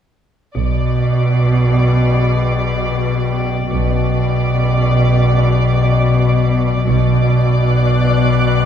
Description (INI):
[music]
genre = cinematic, suspense film score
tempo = 76 BPM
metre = 4/4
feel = straight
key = B minor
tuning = A4 = 440 Hz
[part]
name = muted chamber double bass section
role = bass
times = 0.5-7.6 s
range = B1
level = -22 LUFS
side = right 4 dB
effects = none
[part]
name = metallic inharmonic drone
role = drone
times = 1.4-8.7 s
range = B1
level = -20 LUFS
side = right 1 dB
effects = chorus, built-in reverb
[part]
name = muted chamber violin section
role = melody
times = 0.6-8.7 s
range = D5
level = -22 LUFS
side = left 1 dB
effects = none
[part]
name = marimba with medium mallets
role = riff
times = 0.6-8.7 s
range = B2 to B3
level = -16 LUFS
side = left 5 dB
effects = none
[part]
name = muted chamber cello section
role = bass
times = 0.6-8.7 s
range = B2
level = -18 LUFS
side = right 3 dB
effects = none
[part]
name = muted chamber violin section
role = texture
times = 6.9-8.7 s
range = D6 to F#6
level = -25 LUFS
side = left 1 dB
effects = none
[sound]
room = moderate scoring stage reverb, RT60 1.7 s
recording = minimal, uncompressed stereo recording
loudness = -12 LUFS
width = side -8 dB against mid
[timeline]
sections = 0.6-8.7 A section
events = none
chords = 0.6 Bm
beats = | 0.56 1.34 2.13 2.92 | 3.71 4.50 5.29 6.08 | 6.87 7.66 8.45